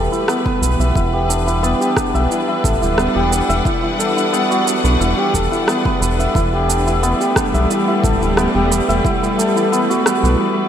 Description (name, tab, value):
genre	organic downtempo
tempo	89 BPM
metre	4/4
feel	straight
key	E minor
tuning	A4 = 444 Hz
part	bright studio string section	sustained chords	0.0-10.7 s	E3 to F#5	-20 LUFS	left 1 dB	sidechain pumping
part	santur	arpeggios	0.0-10.7 s	B3 to E5	-17 LUFS	equal	vintage 12-bit sampler grit, digital delay
part	round analog bass	bass	0.0-10.4 s	D1 to B1	-18 LUFS	equal	sidechain pumping
part	electronic shaker and rim click	drums	0.1-10.4 s	none	-23 LUFS	right 2 dB	overdrive
part	electronic kick drum	drums	0.5-9.2 s	none	-22 LUFS	equal	overdrive
room	wet lush hall reverb, RT60 1.8 s, small room reverb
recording	bright 1980s-style digital production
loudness	-14 LUFS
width	side -9 dB against mid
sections	0.0-10.7 A section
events	break 10.4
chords	0.0 Em9